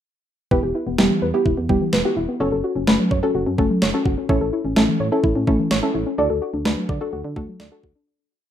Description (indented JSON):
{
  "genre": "synth-pop",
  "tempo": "127 BPM",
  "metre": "4/4",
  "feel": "straight",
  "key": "E dorian",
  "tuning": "A4 = 440 Hz",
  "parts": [
    { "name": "soft round pluck", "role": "accompaniment", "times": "0.5-8.0 s", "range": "B3 to B4", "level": "-24 LUFS", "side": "right 1 dB", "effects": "chorus" },
    { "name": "soft round pluck", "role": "arpeggios", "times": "0.5-8.0 s", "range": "E3 to D5", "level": "-22 LUFS", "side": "left 2 dB", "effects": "chorus, tape echo" },
    { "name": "solid FM bass", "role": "bass", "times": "0.5-7.9 s", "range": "E1 to D3", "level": "-27 LUFS", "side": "right 1 dB", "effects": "none" },
    { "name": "clean 12-bit digital drum machine", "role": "drums", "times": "0.5-7.9 s", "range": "kick drum, snare drum", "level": "-22 LUFS", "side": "right 1 dB", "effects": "none" }
  ],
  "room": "wet studio reverb, RT60 0.6 s",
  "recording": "rough home demo mix",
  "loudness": "-18 LUFS",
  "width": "side -10 dB against mid",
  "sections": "0.5-8.1 verse",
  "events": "fade-out 6.2-8.1",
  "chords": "0.5 Em; 2.4 F#m; 4.3 A; 6.2 D"
}